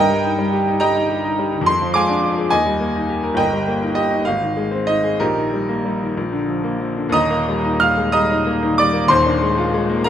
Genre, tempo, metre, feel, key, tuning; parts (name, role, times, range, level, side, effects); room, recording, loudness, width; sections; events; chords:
classical, romantic character piece for solo piano; 59-72 BPM (dotted quarters); 6/8; rubato; Eb major; A4 = 442 Hz
bright grand piano; solo; 0.0-10.1 s; Eb1 to F6; -16 LUFS; equal
moderate recital hall reverb, RT60 1.7 s; close, detailed microphones; -16 LUFS; side -10 dB against mid
0.0-7.1 A section; 7.1-10.1 B section
0.0 Eb/G; 1.7 Ddim/F; 2.5 Eb; 3.4 Eb/G; 4.3 Ab; 5.2 Eb/Bb; 6.2 Bb; 7.1 Eb; 9.1 Bb7/Eb